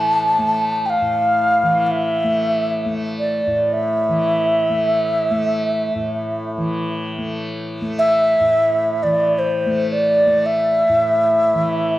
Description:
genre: world meditative, free-time meditation music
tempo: free time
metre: none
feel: none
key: unclear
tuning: A4 = 440 Hz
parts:
  - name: bright wooden-headed alto flute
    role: melody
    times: 0.0-12.0 s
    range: C5 to A5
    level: -16 LUFS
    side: equal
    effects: diffuse ambient delay
  - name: tanpura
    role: drone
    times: 0.0-12.0 s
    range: A2 to A3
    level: -24 LUFS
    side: left 1 dB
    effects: none
room: wet scoring stage reverb, RT60 1.6 s, studio ambience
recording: worn, warbling old tape, cassette tape, warbly pitch drift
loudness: -16 LUFS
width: side -15 dB against mid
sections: 0.0-12.0 A section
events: none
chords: none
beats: free time

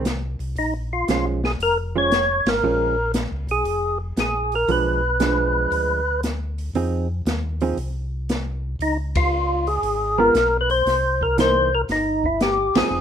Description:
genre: soul jazz organ trio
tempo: 117 BPM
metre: 4/4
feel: swing 67% on 8ths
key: unclear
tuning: A4 = 440 Hz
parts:
  - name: hollow-body jazz guitar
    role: accompaniment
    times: 0.0-13.0 s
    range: E3 to Ab4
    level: -24 LUFS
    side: right 6 dB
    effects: none
  - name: mellow tonewheel organ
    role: bass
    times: 0.0-13.0 s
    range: F1 to F2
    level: -26 LUFS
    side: equal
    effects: slow rotary speaker
  - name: open jazz drum kit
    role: drums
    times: 0.1-12.8 s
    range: hi-hat, kick drum, ride cymbal, snare drum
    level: -25 LUFS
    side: equal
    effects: none
  - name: percussive tonewheel organ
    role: melody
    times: 0.6-13.0 s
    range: Eb4 to Db5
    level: -20 LUFS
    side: left 1 dB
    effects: slow rotary speaker, overdrive
room: light reverb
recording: minimal, uncompressed stereo recording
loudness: -19 LUFS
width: side -8 dB against mid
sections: 0.0-13.0 A section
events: band accent 2.4, 9.1, 12.7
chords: 0.0 N.C.; 0.6 Bbm7; 4.7 Bdim7; 6.7 Fm7; 8.8 Db7; 10.9 C7#9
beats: 0.06 | 0.57 1.08 1.60 2.12 | 2.63 3.15 3.66 4.17 | 4.69 5.20 5.72 6.23 | 6.75 7.26 7.78 8.29 | 8.80 9.32 9.83 10.35 | 10.86 11.38 11.89 12.40 | 12.92

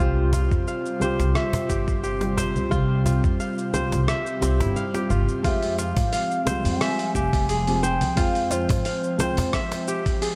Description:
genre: organic downtempo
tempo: 88 BPM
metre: 4/4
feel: swing 53% on 16ths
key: F harmonic minor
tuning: A4 = 440 Hz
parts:
  - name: felt-muted upright piano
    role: accompaniment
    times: 0.0-10.4 s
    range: G3 to G5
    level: -32 LUFS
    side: equal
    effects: sidechain pumping, tape echo, shimmer reverb
  - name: airy breathy pad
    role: sustained chords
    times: 0.0-10.4 s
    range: C3 to F4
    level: -33 LUFS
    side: equal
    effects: chorus, sidechain pumping, shimmer reverb
  - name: kora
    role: arpeggios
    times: 0.0-10.4 s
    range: C4 to F5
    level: -31 LUFS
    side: equal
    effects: tape echo, shimmer reverb
  - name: upright bass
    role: bass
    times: 0.0-9.5 s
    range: F1 to Ab2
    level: -27 LUFS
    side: equal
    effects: sidechain pumping
  - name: drifting glass-harmonics texture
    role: texture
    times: 0.0-5.5 s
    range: C4 to C5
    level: -43 LUFS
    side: equal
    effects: none
  - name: dusty soul sampler-style drum kit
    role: drums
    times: 0.3-10.4 s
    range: cabasa, congas, hi-hat, rim click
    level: -34 LUFS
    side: equal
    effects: overdrive
  - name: cajon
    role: percussion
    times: 0.3-9.8 s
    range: none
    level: -33 LUFS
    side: equal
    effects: none
  - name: electronic kick drum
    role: drums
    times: 0.5-10.2 s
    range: none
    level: -28 LUFS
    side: equal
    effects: overdrive
  - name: mellow bansuri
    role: melody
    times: 5.4-9.9 s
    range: C5 to Ab5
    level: -30 LUFS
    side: equal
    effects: tape echo, shimmer reverb
room: moderate lush hall reverb, RT60 3.2 s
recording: dark, warm production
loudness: -23 LUFS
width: mono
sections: 0.0-5.4 A section; 5.4-10.4 B section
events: kick drops out 4.1-5.4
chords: 0.0 Csus4; 5.4 Fmadd9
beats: 0.67 1.36 2.04 | 2.72 3.40 4.08 4.76 | 5.45 6.13 6.81 7.49 | 8.17 8.86 9.54 10.22

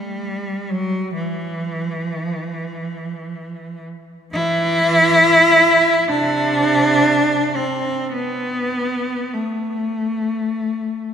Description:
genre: classical, free, expressive piece for unaccompanied cello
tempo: 49-70 BPM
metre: 4/4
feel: rubato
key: E minor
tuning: A4 = 445 Hz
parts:
  - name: rich cello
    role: solo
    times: 0.0-11.1 s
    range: C3 to E4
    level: -16 LUFS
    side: equal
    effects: none
room: wet church reverb, RT60 2.8 s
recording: none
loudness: -16 LUFS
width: side -8 dB against mid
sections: 0.0-11.1 A section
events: none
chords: none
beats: | 0.70 1.63 2.52 3.42 | 4.33 5.22 6.09 7.03 | 8.14 9.36 10.53

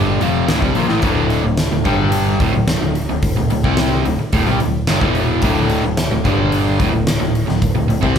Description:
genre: hard rock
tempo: 110 BPM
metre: 4/4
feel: straight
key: D minor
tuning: A4 = 440 Hz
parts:
  - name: cranked stack guitar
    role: riff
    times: 0.0-8.2 s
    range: D2 to C4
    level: -21 LUFS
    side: right 7 dB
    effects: overdrive
  - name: overdriven semi-hollow guitar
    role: riff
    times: 0.0-8.2 s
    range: D2 to C4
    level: -19 LUFS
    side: left 5 dB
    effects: none
  - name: picked electric bass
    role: bass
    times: 0.0-8.2 s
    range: D1 to C2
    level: -22 LUFS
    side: equal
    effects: none
  - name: huge arena drum kit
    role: drums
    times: 0.2-8.2 s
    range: hi-hat, kick drum, snare drum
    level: -19 LUFS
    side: equal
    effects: none
room: moderate large studio reverb, RT60 0.9 s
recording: band playing live in one room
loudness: -14 LUFS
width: side -8 dB against mid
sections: 0.0-8.2 A section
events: none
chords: 0.0 Dm; 1.9 G5; 2.4 D5; 6.2 G5; 6.8 D5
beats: 0.49 | 1.04 1.58 2.13 2.68 | 3.23 3.78 4.33 4.87 | 5.42 5.97 6.52 7.07 | 7.62 8.16

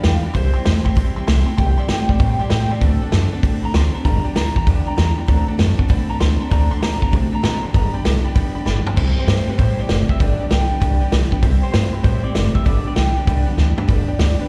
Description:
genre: rockabilly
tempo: 195 BPM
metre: 4/4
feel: swing 65% on 8ths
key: G major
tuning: A4 = 440 Hz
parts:
  - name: electric guitar through a small old amp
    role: melody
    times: 0.0-14.5 s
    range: A4 to C6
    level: -30 LUFS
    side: equal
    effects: slapback echo, analog delay
  - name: honky-tonk upright piano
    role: accompaniment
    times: 0.0-14.5 s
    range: B4 to D6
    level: -38 LUFS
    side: equal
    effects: slapback echo
  - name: picked steel-string acoustic guitar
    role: accompaniment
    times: 0.0-14.5 s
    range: G2 to A4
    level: -33 LUFS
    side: equal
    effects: slapback echo
  - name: electric guitar through a small old amp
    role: riff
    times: 0.0-14.5 s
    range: G2 to B3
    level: -28 LUFS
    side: equal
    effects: warbly pitch drift
  - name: upright bass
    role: bass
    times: 0.0-14.4 s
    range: F#1 to C3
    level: -21 LUFS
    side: equal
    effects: none
  - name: vintage drum kit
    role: drums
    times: 0.0-14.3 s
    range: crash cymbal, hi-hat, kick drum, snare drum, toms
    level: -22 LUFS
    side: equal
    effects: none
room: studio reverb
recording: live gig heard through the venue's PA, recital hall reverb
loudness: -18 LUFS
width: mono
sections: 0.0-9.0 A section; 9.0-14.5 B section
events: clean electric guitar solo 0.0-9.0; drum fill 8.7-9.0, 13.6-13.9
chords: 0.4 C; 2.8 D7; 4.0 G; 5.3 D7; 7.7 G; 9.0 C; 10.2 G; 11.4 C; 12.7 G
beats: 0.04 | 0.35 0.66 0.97 1.28 | 1.58 1.89 2.20 2.51 | 2.82 3.13 3.43 3.74 | 4.05 4.36 4.67 4.97 | 5.28 5.59 5.90 6.21 | 6.51 6.82 7.13 7.44 | 7.74 8.05 8.36 8.67 | 8.97 9.28 9.59 9.89 | 10.20 10.51 10.82 11.12 | 11.43 11.74 12.04 12.35 | 12.66 12.96 13.27 13.58 | 13.88 14.19

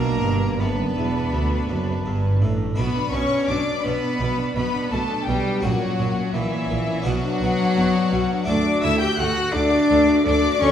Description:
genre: classical, baroque-style concerto movement with solo episodes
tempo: 84 BPM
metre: 4/4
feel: straight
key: B minor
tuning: A4 = 441 Hz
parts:
  - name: rich cello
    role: melody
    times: 0.0-10.7 s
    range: E3 to G4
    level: -23 LUFS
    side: left 1 dB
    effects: none
  - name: rich chamber violin section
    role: melody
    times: 0.0-10.7 s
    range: E5 to G6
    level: -28 LUFS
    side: left 3 dB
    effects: none
  - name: rich chamber violin section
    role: second line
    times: 0.0-10.7 s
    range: E4 to G5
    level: -27 LUFS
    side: left 3 dB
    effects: none
  - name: harpsichord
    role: accompaniment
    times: 0.0-10.7 s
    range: D2 to F#4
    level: -31 LUFS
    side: left 1 dB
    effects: none
  - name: rich chamber viola section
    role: accompaniment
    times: 0.0-10.7 s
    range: A#3 to A4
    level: -30 LUFS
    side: right 2 dB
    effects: none
  - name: rich chamber cello section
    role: bass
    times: 0.0-10.7 s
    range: D2 to B2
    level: -27 LUFS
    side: right 2 dB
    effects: none
  - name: warm chamber double bass section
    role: bass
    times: 0.0-10.7 s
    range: E1 to D2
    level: -27 LUFS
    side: right 2 dB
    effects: none
room: wet recital hall reverb, RT60 1.5 s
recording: heard from further back in the room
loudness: -19 LUFS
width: side -9 dB against mid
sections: 0.0-2.8 A section; 2.8-10.7 A section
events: none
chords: 0.0 Bm; 5.6 F#/A#; 7.1 Bm; 8.5 D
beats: 0.60 1.32 2.05 | 2.78 3.49 4.20 4.92 | 5.63 6.34 7.05 7.77 | 8.48 9.19 9.90 10.61

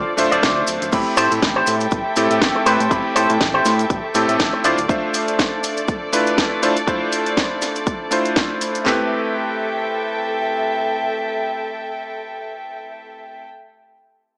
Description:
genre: nu-disco, nu disco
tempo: 121 BPM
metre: 4/4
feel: swing 56% on 16ths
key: A minor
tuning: A4 = 440 Hz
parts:
  - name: clear electric grand piano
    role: accompaniment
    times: 0.0-13.4 s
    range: A3 to B5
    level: -23 LUFS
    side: equal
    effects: low-pass filter, digital delay
  - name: dark studio violin section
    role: sustained chords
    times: 0.0-13.4 s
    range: A4 to G5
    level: -26 LUFS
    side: equal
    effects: sidechain pumping
  - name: electric guitar with an envelope filter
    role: riff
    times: 0.0-4.9 s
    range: F4 to D5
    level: -23 LUFS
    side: equal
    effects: analog chorus, digital delay
  - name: fat analog bass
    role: bass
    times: 0.0-4.9 s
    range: D1 to A2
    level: -27 LUFS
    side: equal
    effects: none
  - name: house drum kit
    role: drums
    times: 0.2-8.8 s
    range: crash cymbal, hi-hat, snare drum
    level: -25 LUFS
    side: equal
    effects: studio reverb
  - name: maracas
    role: percussion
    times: 0.2-8.8 s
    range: none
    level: -34 LUFS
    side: equal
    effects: none
  - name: house drum kit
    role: drums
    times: 0.4-9.0 s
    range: handclaps, kick drum, snare drum, toms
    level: -26 LUFS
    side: equal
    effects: studio reverb
room: moderate plate reverb, RT60 2.0 s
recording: small speaker sound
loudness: -19 LUFS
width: mono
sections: 0.9-8.9 A section; 8.9-12.8 B section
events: none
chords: 0.0 Dm7; 0.9 Am7; 4.6 Dm7; 8.9 Am7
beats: 0.43 | 0.93 1.42 1.92 2.41 | 2.91 3.41 3.90 4.40 | 4.89 5.39 5.88 6.38 | 6.88 7.37 7.87 8.37 | 8.86 9.36 9.85 10.35 | 10.84 11.34 11.84 12.33

